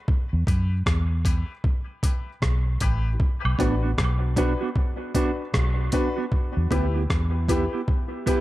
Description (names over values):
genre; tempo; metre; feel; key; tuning
dub reggae; 77 BPM; 4/4; swing 62% on 16ths; unclear; A4 = 442 Hz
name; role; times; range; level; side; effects
breakbeat sampler-style drum kit; drums; 0.1-8.4 s; hi-hat, kick drum, rim click; -24 LUFS; equal; overdrive
vintage muted fingered electric bass; bass; 0.3-7.7 s; A1 to F#2; -23 LUFS; equal; none
dark upright piano; stabs; 0.5-8.4 s; D4 to B4; -31 LUFS; left 5 dB; high-pass filter, dub echo
woodblock; percussion; 3.5-3.6 s; none; -36 LUFS; right 2 dB; dub echo
mellow electric guitar; accompaniment; 3.6-8.4 s; B3 to G4; -28 LUFS; right 6 dB; dub echo
room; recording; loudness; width
light reverb, digital ambience; echo-heavy mix; -22 LUFS; side -16 dB against mid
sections
0.0-8.4 A section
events
break 0.0-3.2; part muted 3.2-8.4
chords
0.1 Em; 3.2 Bm; 6.3 Em